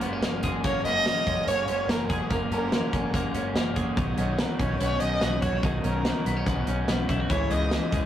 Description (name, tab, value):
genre	jangly indie pop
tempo	144 BPM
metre	4/4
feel	straight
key	F# mixolydian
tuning	A4 = 441 Hz
part	dark violin	melody	0.0-7.9 s	G#4 to D#5	-29 LUFS	right 1 dB	none
part	raw garage guitar	accompaniment	0.0-8.1 s	F#2 to G#4	-31 LUFS	equal	overdrive
part	twelve-string electric guitar	arpeggios	0.0-8.1 s	D#3 to G#4	-32 LUFS	left 2 dB	none
part	vintage muted fingered electric bass	bass	0.0-8.1 s	F#1 to C#2	-31 LUFS	equal	none
part	modern studio drum kit	drums	0.0-8.0 s	hi-hat, kick drum, snare drum	-29 LUFS	equal	none
room	moderate small room reverb, RT60 0.6 s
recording	rough rehearsal-room recording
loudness	-23 LUFS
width	side -11 dB against mid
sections	0.0-8.1 A section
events	none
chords	0.0 F#add9; 4.0 Badd9; 7.3 C#madd9